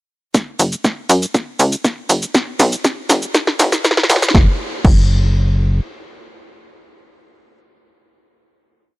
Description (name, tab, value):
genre	melodic techno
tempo	120 BPM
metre	4/4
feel	straight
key	unclear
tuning	A4 = 441 Hz
part	electronic kick drum	drums	0.3-5.0 s	none	-13 LUFS	equal	overdrive, high-pass filter on kick
part	punchy analog drum machine	drums	0.3-5.0 s	crash cymbal, hi-hat, shaker, snare drum	-17 LUFS	equal	sidechain pumping on perc, sidechain pumping on hats, sidechain pumping on cymbals
part	tight sequencer bass	bass	0.6-5.8 s	F#1 to F#2	-14 LUFS	equal	sidechain pumping, high-pass filter
room	digital ambience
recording	dry, gritty hardware recording, high-pass filter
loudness	-13 LUFS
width	side -20 dB against mid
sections	0.3-4.3 build; 4.3-8.3 final note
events	build-up 0.3-4.3; drum fill 0.3-4.3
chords	none